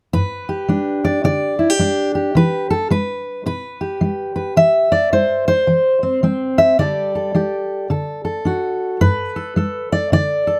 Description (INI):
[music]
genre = folk, solo fingerstyle acoustic guitar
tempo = 108 BPM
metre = 4/4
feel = swing 62% on 8ths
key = G major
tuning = A4 = 440 Hz
[part]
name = fingerpicked steel-string acoustic guitar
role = solo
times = 0.1-10.6 s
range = G2 to E5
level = -18 LUFS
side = equal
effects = none
[sound]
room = little or no reverb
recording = close, detailed microphones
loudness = -18 LUFS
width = mono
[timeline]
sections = 0.1-10.6 A section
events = none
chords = 0.1 G; 2.4 Em; 4.6 C/E; 6.8 Dsus4; 7.9 D; 9.0 Gadd9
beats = | 0.13 0.69 1.24 1.80 | 2.35 2.91 3.46 4.01 | 4.57 5.12 5.68 6.23 | 6.78 7.34 7.89 8.45 | 9.00 9.56 10.11